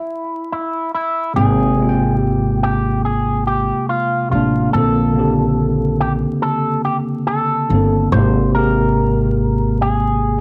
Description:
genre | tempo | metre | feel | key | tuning
hip hop | 71 BPM | 4/4 | swing 63% on 16ths | unclear | A4 = 440 Hz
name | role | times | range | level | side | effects
electric guitar with an envelope filter | melody | 0.0-10.4 s | E4 to C5 | -23 LUFS | equal | subtle chorus, low-pass filter, plate reverb
tine electric piano | accompaniment | 1.3-10.4 s | C3 to G5 | -20 LUFS | equal | cassette tape, low-pass filter, plate reverb
upright bass | bass | 1.4-10.4 s | G1 to Bb1 | -21 LUFS | equal | tube saturation
room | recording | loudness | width
moderate studio reverb, RT60 0.6 s | home recording on cassette, vinyl crackle | -17 LUFS | mono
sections
0.0-1.4 A section; 1.4-10.4 B section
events
stop 0.0-1.4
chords
0.0 N.C.; 1.4 Abmaj9; 4.7 Bbmaj9; 8.1 Abmaj9

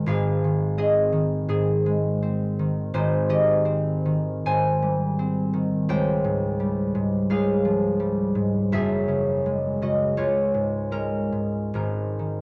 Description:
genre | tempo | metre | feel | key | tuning
classical, solo harp piece | 68-88 BPM | 4/4 | rubato | Ab major | A4 = 437 Hz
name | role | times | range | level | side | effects
concert harp | solo | 0.0-12.4 s | Gb1 to Ab5 | -24 LUFS | equal | none
room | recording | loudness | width
light reverb | worn, warbling old tape, cassette tape, warbly pitch drift | -24 LUFS | mono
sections
0.0-12.4 A section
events
none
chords
0.0 Ab6; 3.0 Abmaj7; 5.9 Dbmaj7#11; 8.7 Gbsus2; 10.2 Db; 11.8 Ab5

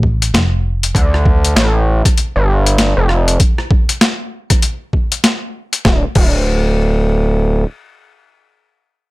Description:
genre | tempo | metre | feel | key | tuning
glitch hop | 98 BPM | 4/4 | swing 61% on 16ths | D minor | A4 = 440 Hz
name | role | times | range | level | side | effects
slap-like FM bass | bass | 0.0-0.9 s | F1 to A1 | -14 LUFS | equal | none
electronic kick drum | drums | 0.0-6.4 s | none | -13 LUFS | equal | overdrive
boom bap sampler-style drum kit | drums | 0.2-6.4 s | crash cymbal, hi-hat, rim click, snare drum | -16 LUFS | left 1 dB | overdrive
gritty driven synth bass | bass | 0.9-7.6 s | D1 to D2 | -12 LUFS | equal | overdrive
room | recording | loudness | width
little or no reverb | none | -12 LUFS | side -21 dB against mid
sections
0.0-5.8 A section; 5.8-8.3 B section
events
drop 0.0-5.8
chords
0.0 Dm; 5.8 N.C.

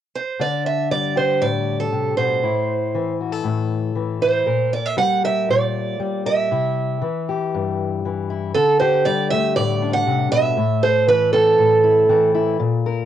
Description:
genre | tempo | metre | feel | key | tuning
acoustic folk duo or small band | 118 BPM | 4/4 | straight | unclear | A4 = 436 Hz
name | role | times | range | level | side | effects
picked acoustic archtop guitar | melody | 0.2-12.3 s | A4 to F#5 | -18 LUFS | right 4 dB | cassette tape
fingerpicked steel-string acoustic guitar | accompaniment | 0.4-13.1 s | G2 to Bb4 | -22 LUFS | left 6 dB | cassette tape
room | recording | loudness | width
moderate booth ambience, RT60 0.2 s | home recording on cassette | -17 LUFS | side -10 dB against mid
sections
0.4-8.5 A section; 8.5-13.1 B section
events
none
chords
0.4 Dsus4; 2.4 Am; 4.5 Gm/Bb; 6.5 C; 8.5 Dsus4; 10.6 Am

